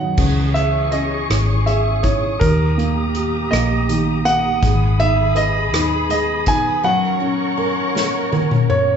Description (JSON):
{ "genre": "six-eight pop ballad", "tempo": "54 BPM (dotted quarters)", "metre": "6/8", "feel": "straight", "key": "unclear", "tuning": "A4 = 441 Hz", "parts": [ { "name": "warm grand piano", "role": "melody", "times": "0.0-9.0 s", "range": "A#4 to G#5", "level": "-20 LUFS", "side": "right 2 dB", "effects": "none" }, { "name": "felt-muted upright piano", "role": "accompaniment", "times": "0.0-9.0 s", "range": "F#2 to C#5", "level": "-23 LUFS", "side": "right 1 dB", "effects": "none" }, { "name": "muted studio string section", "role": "sustained chords", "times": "0.0-9.0 s", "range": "F#2 to D#6", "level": "-24 LUFS", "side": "left 1 dB", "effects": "none" }, { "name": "picked steel-string acoustic guitar", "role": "arpeggios", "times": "0.2-9.0 s", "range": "D#3 to G#4", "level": "-29 LUFS", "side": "left 4 dB", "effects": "none" }, { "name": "vintage muted fingered electric bass", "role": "bass", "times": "0.2-6.8 s", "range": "G#1 to D#2", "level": "-20 LUFS", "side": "left 1 dB", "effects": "none" }, { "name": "unplugged drum kit", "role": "drums", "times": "0.2-8.9 s", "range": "crash cymbal, hi-hat, kick drum, rim click, snare drum, toms", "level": "-22 LUFS", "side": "left 1 dB", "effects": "none" } ], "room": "wet large studio reverb, RT60 1.4 s", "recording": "band playing live in one room, nothing above 7.8 kHz", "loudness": "-15 LUFS", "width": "side -7 dB against mid", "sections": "0.2-9.0 A section", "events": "drum fill 8.0-9.0", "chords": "0.2 C#madd9; 2.4 D#; 4.6 G#m; 6.8 F#", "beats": "| 0.18 1.30 | 2.41 3.52 | 4.62 5.73 | 6.84 7.95" }